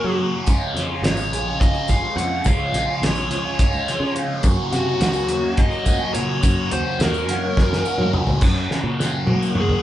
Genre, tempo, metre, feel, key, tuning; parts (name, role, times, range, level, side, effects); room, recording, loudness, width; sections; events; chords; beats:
psychedelic rock; 211 BPM (eighths); 7/8; straight; A4 = 439 Hz
fuzz lead guitar; melody; 0.0-9.8 s; Gb4 to Gb5; -25 LUFS; left 2 dB; distortion
phased string machine; sustained chords; 0.0-9.8 s; Db4 to C6; -34 LUFS; right 3 dB; ensemble chorus, phaser
biting overdriven guitar; riff; 0.0-9.8 s; Gb2 to Gb4; -23 LUFS; equal; phaser
picked electric bass; bass; 0.0-9.8 s; Ab1 to Gb3; -26 LUFS; equal
cloth-damped thuddy drum kit; drums; 0.5-9.8 s; crash cymbal, hi-hat, kick drum, snare drum, toms; -20 LUFS; equal
tambourine; percussion; 0.5-9.6 s; -39 LUFS; left 6 dB
moderate large studio reverb, RT60 0.9 s; band playing live in one room, nothing above 11.0 kHz; -18 LUFS; side -13 dB against mid
0.0-8.4 A section; 8.4-9.8 B section
drum fill 7.6-8.4, 8.7-9.8
0.5 Db6; 4.4 Gb
0.19 | 0.47 0.75 1.04 1.32 1.60 1.89 2.17 | 2.45 2.74 3.02 3.31 3.59 3.87 4.16 | 4.44 4.72 5.01 5.29 5.58 5.86 6.14 | 6.43 6.71 7.00 7.28 7.57 7.85 8.13 | 8.42 8.70 8.99 9.27 9.56